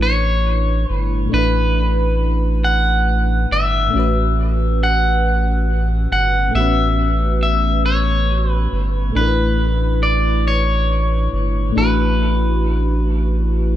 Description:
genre	slow six-eight R&B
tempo	46 BPM (dotted quarters)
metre	6/8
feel	straight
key	unclear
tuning	A4 = 441 Hz
part	electric guitar at the edge of break-up	melody	0.0-13.5 s	B4 to F#5	-20 LUFS	equal	spring reverb, dub echo
part	FM electric piano with soft pad layer	accompaniment	0.0-13.8 s	A2 to B4	-22 LUFS	left 2 dB	chorus, dub echo
part	round analog bass	bass	0.0-13.8 s	G1 to A1	-17 LUFS	equal	none
room	digital ambience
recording	echo-heavy mix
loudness	-15 LUFS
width	side -12 dB against mid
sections	0.0-13.8 A section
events	none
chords	0.0 G6; 3.9 A6; 9.1 G6 (rootless)

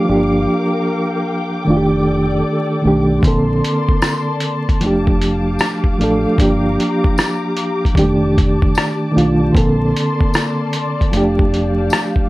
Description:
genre	lo-fi hip hop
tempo	76 BPM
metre	4/4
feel	swing 66% on 16ths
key	unclear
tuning	A4 = 441 Hz
part	mellow reed electric piano	accompaniment	0.0-12.3 s	C3 to A4	-16 LUFS	right 1 dB	fast tremolo, cassette tape, low-pass filter
part	muted studio string section	sustained chords	0.0-12.3 s	Bb3 to D6	-24 LUFS	left 3 dB	low-pass filter
part	deep dub fingered electric bass	bass	0.1-11.9 s	F1 to B1	-21 LUFS	equal	none
part	lo-fi sampler-style drum kit	drums	3.2-12.3 s	hi-hat, kick drum, rim click	-16 LUFS	equal	none
part	tambourine	percussion	4.0-12.1 s	none	-34 LUFS	left 7 dB	none
room	light reverb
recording	vinyl crackle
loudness	-13 LUFS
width	side -18 dB against mid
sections	0.0-12.3 A section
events	none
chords	0.1 Gm7; 1.7 F13; 3.2 Bbmaj9; 4.8 F69; 6.4 Gm7; 8.0 F13; 9.5 Bbmaj9; 11.1 F69

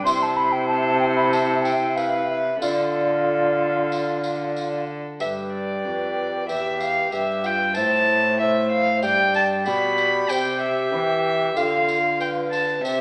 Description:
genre	classical, renaissance-style consort dance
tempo	94 BPM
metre	4/4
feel	straight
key	D dorian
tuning	A4 = 439 Hz
part	rich violin	melody	0.0-13.0 s	A4 to B5	-23 LUFS	equal	none
part	mellow hollow tenor recorder	second line	0.0-13.0 s	A4 to C6	-24 LUFS	equal	none
part	mellow bassoon	accompaniment	0.0-13.0 s	E4 to G4	-26 LUFS	equal	none
part	rich cello	bass	0.0-13.0 s	E2 to E3	-27 LUFS	equal	none
part	tambourine	percussion	0.1-13.0 s	none	-39 LUFS	equal	none
room	wet stone room reverb, RT60 1.3 s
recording	small speaker sound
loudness	-19 LUFS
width	side -30 dB against mid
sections	0.0-5.2 A section; 5.2-13.0 B section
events	none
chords	0.1 C; 2.6 Dm; 5.2 G; 6.5 Em; 7.8 Am; 9.0 G; 10.3 C; 11.6 Dm

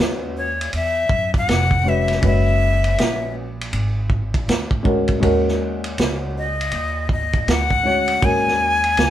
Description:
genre	hip hop, jazz-hop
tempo	80 BPM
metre	4/4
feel	swing 63% on 16ths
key	C# dorian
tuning	A4 = 440 Hz
part	dark upright piano	accompaniment	0.0-9.1 s	G#3 to C#5	-22 LUFS	left 1 dB	none
part	upright bass	bass	0.0-9.1 s	E#1 to F#2	-23 LUFS	equal	none
part	vintage drum kit	drums	0.0-9.1 s	hi-hat, kick drum, ride cymbal, snare drum	-22 LUFS	right 1 dB	none
part	breathy bright jazz flute	melody	0.4-9.1 s	C#5 to G#5	-20 LUFS	left 2 dB	none
room	moderate studio ambience, RT60 0.5 s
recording	band playing live in one room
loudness	-17 LUFS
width	side -12 dB against mid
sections	0.0-9.1 A section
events	none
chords	0.0 C#m9; 2.2 F#9sus4; 5.2 D#m7; 8.2 G#9sus4

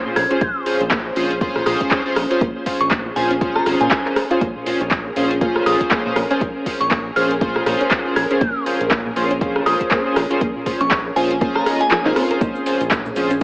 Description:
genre	deep house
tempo	120 BPM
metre	4/4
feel	swing 58% on 16ths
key	Bb minor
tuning	A4 = 441 Hz
part	soft string machine	sustained chords	0.0-13.4 s	Db4 to C5	-25 LUFS	equal	ensemble chorus, sidechain pumping
part	chorused polysynth	stabs	0.0-13.4 s	Db4 to Eb5	-20 LUFS	equal	sidechain pumping, tape echo
part	soft round pluck	arpeggios	0.1-13.4 s	Bb2 to Bb4	-26 LUFS	equal	chorus, sidechain pumping, digital delay
part	glassy synth bell	melody	0.2-12.0 s	Ab5 to Ab6	-22 LUFS	equal	chorus, phaser, vintage 12-bit sampler grit, tape echo
part	round analog bass	bass	0.2-13.4 s	Ab1 to Bb2	-28 LUFS	equal	sidechain pumping
part	deep house drum kit	drums	0.2-13.4 s	handclaps, hi-hat, rim click	-22 LUFS	equal	overdrive
part	electronic kick drum	drums	0.4-13.4 s	none	-22 LUFS	equal	overdrive
part	swell	sound effects	11.6-12.4 s	none	-33 LUFS	equal	none
part	cabasa	percussion	12.4-13.4 s	none	-44 LUFS	equal	none
room	moderate plate reverb, RT60 2.1 s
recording	vinyl crackle, AM radio sound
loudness	-16 LUFS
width	side -26 dB against mid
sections	0.0-13.4 A section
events	kick drops out 11.9-12.4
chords	0.0 Bbm7

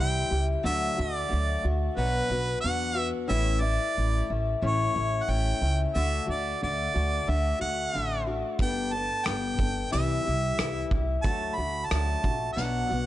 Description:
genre	folk rock and heartland rock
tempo	90 BPM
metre	4/4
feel	straight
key	D major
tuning	A4 = 437 Hz
part	bright harmonica	melody	0.0-13.1 s	B4 to B5	-30 LUFS	right 2 dB	analog delay
part	picked acoustic archtop guitar	accompaniment	0.0-13.1 s	A2 to A4	-31 LUFS	left 4 dB	none
part	upright bass	bass	0.0-13.1 s	G1 to E2	-29 LUFS	right 1 dB	none
part	loose indie drum kit	drums	8.6-12.7 s	hi-hat, kick drum, rim click	-30 LUFS	equal	none
room	small room ambience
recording	nothing above 10.3 kHz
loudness	-25 LUFS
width	side -14 dB against mid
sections	0.0-13.1 A section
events	none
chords	0.0 C; 0.7 D; 2.0 Bm; 3.3 A; 5.9 D; 8.6 Gadd9; 9.9 C; 11.3 D

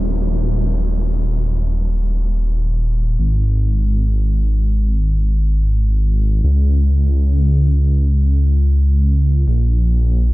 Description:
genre	future bass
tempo	free time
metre	none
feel	none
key	unclear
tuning	A4 = 439 Hz
part	wide detuned saw bass	bass	0.0-10.3 s	Eb1 to Db2	-14 LUFS	equal	chorus, tube saturation
room	digital ambience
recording	dense, heavily limited modern master, low-pass filter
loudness	-14 LUFS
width	side -19 dB against mid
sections	0.0-10.3 A section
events	none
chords	none

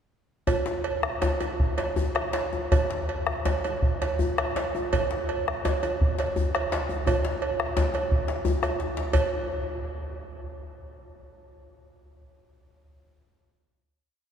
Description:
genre	west african traditional, West African drum ensemble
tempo	106-124 BPM (dotted quarters)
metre	12/8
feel	straight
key	none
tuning	none
part	bombo	percussion	0.5-9.3 s	none	-28 LUFS	equal	none
part	cowbell	percussion	0.5-9.3 s	none	-30 LUFS	right 4 dB	none
part	djembe	percussion	0.5-9.3 s	none	-29 LUFS	left 2 dB	none
room	wet cathedral reverb, RT60 5.1 s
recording	recorded in a church or concert hall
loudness	-24 LUFS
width	side -8 dB against mid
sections	0.5-9.1 A section; 9.1-11.1 final hit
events	speeding up 0.5-11.1; drum fill 8.6-9.1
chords	none

